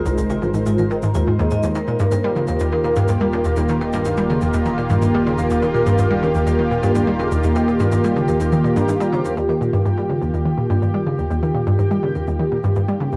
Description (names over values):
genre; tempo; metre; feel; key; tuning
ambient, sequencer-driven space music; 124 BPM; 4/4; straight; unclear; A4 = 444 Hz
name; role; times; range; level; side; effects
lush unison pad; sustained chords; 0.0-13.2 s; Eb3 to C5; -23 LUFS; equal; chorus, cassette tape
fat analog bass; bass; 0.0-13.2 s; Eb1 to Ab1; -35 LUFS; equal; none
vibraphone with medium mallets; arpeggios; 0.1-13.2 s; F4 to Bb5; -28 LUFS; equal; cassette tape, delay
analog pluck; riff; 0.1-13.2 s; C2 to G3; -22 LUFS; equal; chorus, cassette tape, delay
electronic cabasa and toms; percussion; 0.1-13.2 s; none; -32 LUFS; equal; cassette tape, delay
bubbling stepped-filter texture; texture; 9.9-13.2 s; G4 to G5; -35 LUFS; equal; chorus, built-in reverb, cassette tape
room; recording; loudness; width
wet studio ambience, RT60 0.5 s; home recording on cassette; -19 LUFS; mono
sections
0.0-9.4 A section; 9.4-13.2 B section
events
none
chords
0.0 Ab; 1.6 Eb